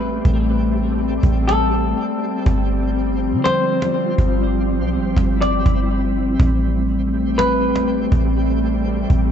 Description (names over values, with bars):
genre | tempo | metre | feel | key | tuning
hip hop, atmospheric cloud-rap | 122 BPM | 4/4 | half-time | A minor | A4 = 441 Hz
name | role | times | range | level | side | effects
semi-hollow electric guitar | melody | 0.0-8.3 s | A4 to D5 | -23 LUFS | left 1 dB | ping-pong delay
warbly tape-like pad | sustained chords | 0.0-9.3 s | F3 to C4 | -21 LUFS | left 2 dB | chorus, built-in reverb
soft 808-style bass | bass | 0.0-9.3 s | G1 to D3 | -20 LUFS | equal | none
cajon | drums | 0.0-9.2 s | none | -24 LUFS | right 1 dB | none
twinkling granular texture | texture | 0.0-9.3 s | G3 to G4 | -28 LUFS | right 1 dB | built-in reverb
room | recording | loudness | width
light reverb, digital ambience | nothing above 7.9 kHz | -16 LUFS | side -8 dB against mid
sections
0.0-9.3 A section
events
none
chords
0.0 Am7; 2.5 G7sus4; 6.4 Am7